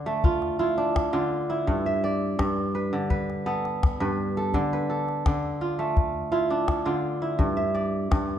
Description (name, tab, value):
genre	west african traditional, West African string and xylophone music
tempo	84 BPM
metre	4/4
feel	straight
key	unclear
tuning	A4 = 440 Hz
part	kora	arpeggios	0.0-8.4 s	G2 to E5	-24 LUFS	right 1 dB	none
part	calabash	percussion	0.2-8.3 s	none	-26 LUFS	left 2 dB	none
room	wet recital hall reverb, RT60 1.5 s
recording	dark, warm production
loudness	-23 LUFS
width	side -10 dB against mid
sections	0.0-8.4 A section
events	none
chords	0.0 Dm; 1.7 G; 4.5 Dm; 7.4 G5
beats	0.24 0.96 | 1.67 2.38 3.10 3.81 | 4.53 5.24 5.95 6.67 | 7.38 8.10